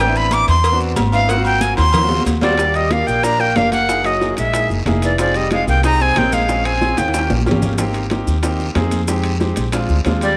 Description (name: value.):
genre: Afro-Cuban jazz.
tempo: 185 BPM.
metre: 4/4.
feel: straight.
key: Eb major.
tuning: A4 = 439 Hz.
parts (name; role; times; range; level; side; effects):
breathy bright jazz flute; melody; 0.0-7.3, 10.2-10.4 s; D5 to D6; -20 LUFS; equal; none.
clear concert grand piano; accompaniment; 0.0-10.3 s; Ab3 to Bb4; -25 LUFS; equal; none.
upright bass; bass; 0.0-10.4 s; F1 to F2; -22 LUFS; equal; none.
agogo bells and timbales; percussion; 0.2-10.4 s; none; -28 LUFS; equal; none.
congas; percussion; 0.2-10.4 s; none; -28 LUFS; equal; none.
maracas; percussion; 0.2-10.4 s; none; -36 LUFS; equal; none.
cowbell and bongos; percussion; 0.3-10.2 s; none; -29 LUFS; equal; none.
guiro; percussion; 0.3-10.4 s; none; -37 LUFS; equal; none.
warm tenor saxophone; second line; 2.4-7.3, 10.2-10.4 s; Fb3 to Eb4; -25 LUFS; equal; none.
room: moderate echo chamber reverb, RT60 2.4 s.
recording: none.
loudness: -16 LUFS.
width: mono.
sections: 0.0-2.6 A section; 2.6-10.4 B section.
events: flute solo 0.0-2.6; drum fill 1.8-2.6, 7.0-7.8.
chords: 0.0 Amadd9; 1.3 Ab13; 2.6 Ebmaj7; 3.9 Gb13; 5.2 Fm9; 6.5 Bbm9; 7.1 Eb7; 7.8 Abmaj9; 9.1 Fm9; 9.7 Bb9.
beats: 0.32 0.64 0.96 | 1.29 1.61 1.94 2.26 | 2.59 2.91 3.24 3.56 | 3.89 4.21 4.54 4.86 | 5.19 5.51 5.84 6.16 | 6.49 6.81 7.14 7.46 | 7.79 8.11 8.44 8.76 | 9.09 9.41 9.73 10.06.